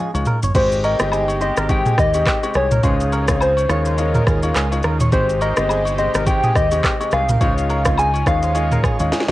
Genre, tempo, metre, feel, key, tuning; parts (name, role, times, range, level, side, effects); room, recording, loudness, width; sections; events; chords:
afrobeats; 105 BPM; 4/4; swing 58% on 16ths; Ab major; A4 = 439 Hz
warm grand piano; accompaniment; 0.0-9.3 s; Ab3 to G4; -26 LUFS; left 3 dB; cassette tape
direct-recorded clean electric guitar; riff; 0.0-9.2 s; G4 to Db5; -28 LUFS; right 2 dB; analog chorus, cassette tape, analog delay
fingered electric bass; bass; 0.1-9.3 s; G1 to Eb2; -21 LUFS; equal
afro-pop drum kit; drums; 0.1-9.3 s; crash cymbal, handclaps, kick drum, rim click, shaker, snare drum, toms; -20 LUFS; equal
agogo bells and woodblock; percussion; 0.1-9.3 s; -30 LUFS; left 3 dB
lush unison pad; sustained chords; 0.5-9.3 s; C3 to G4; -32 LUFS; right 1 dB; chorus, cassette tape
soft struck synth lead; melody; 0.6-9.1 s; C5 to Ab5; -20 LUFS; left 1 dB; chorus, cassette tape, analog delay
mellow horn section; second line; 0.6-9.3 s; Eb3 to Db5; -30 LUFS; right 2 dB; cassette tape
light reverb, digital ambience; home recording on cassette; -15 LUFS; side -16 dB against mid
0.6-9.3 A section
drum fill 0.0-0.6, 9.1
0.0 Eb9sus4; 0.6 Abmaj7; 2.8 Dbmaj9; 5.1 Abmaj7; 7.4 Dbmaj9; 8.3 Eb9sus4